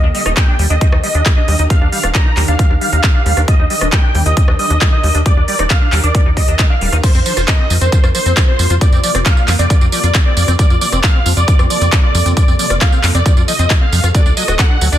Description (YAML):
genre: uplifting trance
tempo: 135 BPM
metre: 4/4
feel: straight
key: unclear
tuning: A4 = 441 Hz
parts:
  - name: big supersaw lead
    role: melody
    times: 0.0-15.0 s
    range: C5 to Bb5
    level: -19 LUFS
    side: right 1 dB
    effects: phaser, sidechain pumping, low-pass filter, tape echo
  - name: shimmering ambient pad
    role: sustained chords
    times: 0.0-15.0 s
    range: C3 to Bb4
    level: -25 LUFS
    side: equal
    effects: chorus, built-in reverb, sidechain pumping
  - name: liquid acid bass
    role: arpeggios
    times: 0.0-15.0 s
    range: F3 to F#4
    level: -24 LUFS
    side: left 1 dB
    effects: wide subtle chorus, sidechain pumping, tape echo
  - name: tight sequencer bass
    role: bass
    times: 0.0-15.0 s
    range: D1 to F2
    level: -14 LUFS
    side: equal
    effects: sidechain pumping
  - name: big-room dance drum kit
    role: drums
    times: 0.1-15.0 s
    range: crash cymbal, handclaps, hi-hat, rim click, tambourine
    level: -19 LUFS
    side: equal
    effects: none
  - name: electronic kick drum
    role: drums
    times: 0.4-14.7 s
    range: none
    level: -12 LUFS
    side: equal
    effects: none
room: little or no reverb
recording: none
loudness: -10 LUFS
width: side -12 dB against mid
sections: 0.0-15.0 A section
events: none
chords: 0.0 Ebmaj7; 7.0 Fsus4; 14.1 D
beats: 0.37 0.81 1.26 | 1.70 2.15 2.59 3.04 | 3.48 3.92 4.37 4.81 | 5.26 5.70 6.15 6.59 | 7.04 7.48 7.92 8.37 | 8.81 9.26 9.70 10.15 | 10.59 11.04 11.48 11.92 | 12.37 12.81 13.26 13.70 | 14.15 14.59